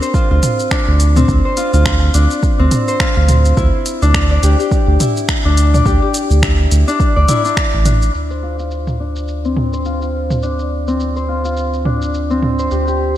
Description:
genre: organic downtempo.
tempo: 105 BPM.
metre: 4/4.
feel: swing 58% on 16ths.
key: D minor.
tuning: A4 = 440 Hz.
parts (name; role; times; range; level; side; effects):
Celtic harp; arpeggios; 0.0-13.2 s; C4 to D5; -18 LUFS; left 2 dB; low-pass filter, ping-pong delay.
organic electronic drum kit; drums; 0.0-13.0 s; finger snaps, hi-hat, shaker, toms; -20 LUFS; right 1 dB; overdrive, low-pass filter on hats, low-pass filter on toms, low-pass filter on perc, low-pass filter on snare.
electronic kick drum; drums; 0.1-7.7 s; none; -17 LUFS; right 1 dB; overdrive.
round analog bass; bass; 0.3-13.2 s; A1 to D2; -14 LUFS; right 1 dB; sidechain pumping.
room: light reverb.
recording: none.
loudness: -12 LUFS.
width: side -12 dB against mid.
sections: 0.0-8.1 A section; 8.1-13.2 B section.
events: filter sweep on harp 8.1-13.2.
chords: 0.0 Dm7; 3.6 A7sus4 (rootless); 8.1 Dm7.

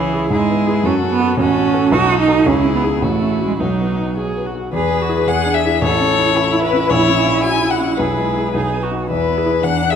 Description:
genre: quick classical-period movement for piano quartet.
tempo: 110 BPM.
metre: 2/4.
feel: rubato.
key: E major.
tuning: A4 = 440 Hz.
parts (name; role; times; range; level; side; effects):
rich violin; melody; 0.0-10.0 s; F#4 to G#5; -20 LUFS; left 8 dB; none.
rich cello; second line; 0.0-10.0 s; E3 to A4; -18 LUFS; right 5 dB; none.
rich viola; accompaniment; 0.0-10.0 s; D#4 to G#4; -24 LUFS; right 2 dB; none.
warm grand piano; accompaniment; 0.0-10.0 s; A1 to C#5; -19 LUFS; left 1 dB; none.
room: moderate concert hall reverb, RT60 1.8 s.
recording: none.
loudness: -14 LUFS.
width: side -8 dB against mid.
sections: 0.0-4.7 A section; 4.7-10.0 B section.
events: none.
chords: 0.3 E/G#; 0.9 F#m; 1.4 F#m/A; 1.9 B7; 2.5 C#m; 3.0 F#m7/A; 3.6 B; 4.7 E; 5.3 E7; 5.8 A; 6.9 F#7/A#; 8.0 E/B; 8.5 B; 9.1 E.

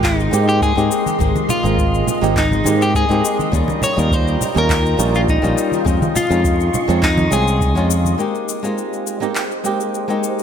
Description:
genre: sunset chillout.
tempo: 103 BPM.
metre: 4/4.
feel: straight.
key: Ab major.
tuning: A4 = 440 Hz.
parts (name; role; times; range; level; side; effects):
electric guitar at the edge of break-up; melody; 0.0-7.9 s; Eb4 to Db5; -20 LUFS; left 2 dB; digital delay.
flamenco guitar; accompaniment; 0.0-10.4 s; G3 to G4; -21 LUFS; moving between left 6 dB and right 8 dB; auto-pan, tape echo.
soft string machine; sustained chords; 0.0-10.4 s; Ab3 to Db6; -24 LUFS; equal; ensemble chorus.
modern bright fingered electric bass; bass; 0.0-8.1 s; Ab1 to Ab2; -18 LUFS; equal; none.
electronic handclaps and cabasa; drums; 0.0-10.4 s; none; -26 LUFS; left 4 dB; none.
electronic kick drum; drums; 0.0-7.7 s; none; -21 LUFS; equal; none.
congas; percussion; 1.1-8.2 s; none; -24 LUFS; right 1 dB; none.
room: light reverb.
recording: none.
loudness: -14 LUFS.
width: side -8 dB against mid.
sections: 0.0-8.2 A section; 8.2-10.4 B section.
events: filter sweep on string machine 8.2-10.4.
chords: 0.0 Abmaj7; 3.5 Eb9; 5.9 Dbmaj9/F; 8.2 Abmaj7.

